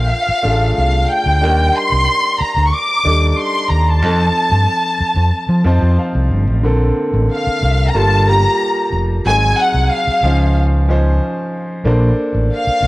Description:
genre	lush 1970s-style soul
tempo	92 BPM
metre	4/4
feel	straight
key	Bb major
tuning	A4 = 440 Hz
part	warm symphonic violin section	melody	0.0-12.9 s	F5 to D6	-16 LUFS	equal	analog delay
part	clear grand piano	accompaniment	0.0-12.9 s	D3 to A5	-20 LUFS	equal	tube saturation
part	overdriven fingered electric bass	bass	0.0-12.9 s	F1 to F3	-14 LUFS	equal	none
room	light reverb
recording	home recording on cassette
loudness	-12 LUFS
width	side -19 dB against mid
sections	0.0-6.6 A section; 6.6-12.9 B section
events	grand piano fill 5.3-6.6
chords	0.0 Bbmaj7; 1.4 Ebmaj7; 4.0 F7; 6.6 Bbmaj9; 7.9 Gm9; 9.3 Ab7; 10.2 Dbmaj9; 11.9 Bbmaj9

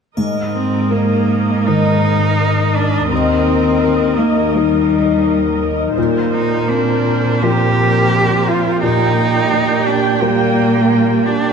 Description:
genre	cinematic, emotional film score for orchestra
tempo	84 BPM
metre	4/4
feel	rubato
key	Eb major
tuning	A4 = 437 Hz
part	dark baby grand piano	accompaniment	0.2-11.5 s	Eb2 to Bb4	-20 LUFS	equal	none
part	warm symphonic viola section	accompaniment	0.2-11.5 s	G4 to G5	-21 LUFS	right 2 dB	none
part	concert harp	arpeggios	0.2-11.5 s	Ab2 to Bb4	-19 LUFS	left 9 dB	none
part	rich chamber cello section	bass	0.2-11.5 s	Eb2 to Bb2	-19 LUFS	right 3 dB	none
part	triangle	percussion	0.2-1.6 s	none	-41 LUFS	right 1 dB	none
part	rich cello	melody	0.5-11.5 s	G3 to G4	-18 LUFS	right 2 dB	none
room	wet scoring stage reverb, RT60 1.6 s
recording	dark, warm production, lossy compression artefacts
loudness	-12 LUFS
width	side -6 dB against mid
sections	0.2-11.5 A section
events	none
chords	0.2 Absus2; 3.1 Eb; 6.0 Bbadd9; 8.8 Eb/Bb

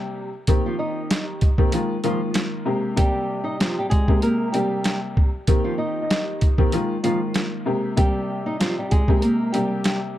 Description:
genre	hip hop, boom-bap hip-hop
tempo	96 BPM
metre	4/4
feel	swing 56% on 16ths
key	unclear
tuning	A4 = 439 Hz
part	dark upright piano	accompaniment	0.0-10.2 s	C3 to G4	-24 LUFS	left 1 dB	cassette tape, high-pass filter, low-pass filter
part	boom bap sampler-style drum kit	drums	0.5-10.0 s	hi-hat, kick drum, snare drum	-20 LUFS	equal	none
part	flamenco guitar	melody	0.7-10.0 s	F3 to Eb5	-25 LUFS	equal	high-pass filter, low-pass filter, analog delay
room	light reverb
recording	echo-heavy mix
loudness	-19 LUFS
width	side -13 dB against mid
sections	0.0-10.2 A section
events	none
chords	0.5 Cm7; 1.7 Bb7sus4; 2.7 Abmaj9; 5.5 Cm7; 6.7 Bb7sus4; 7.7 Abmaj9

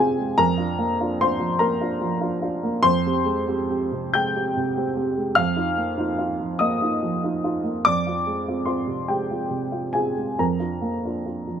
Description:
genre	neoclassical minimalist piano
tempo	48 BPM (dotted quarters)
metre	6/8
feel	uneven beats, rubato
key	F dorian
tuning	A4 = 440 Hz
part	warm upright piano	solo	0.0-11.6 s	F2 to G6	-21 LUFS	equal	none
room	light reverb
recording	close, detailed microphones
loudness	-21 LUFS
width	side -8 dB against mid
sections	0.0-11.6 A section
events	none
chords	0.4 Bb/F; 2.8 Fmadd9; 5.4 Ebsus2/F; 7.8 Fmadd9; 10.4 Bb/F

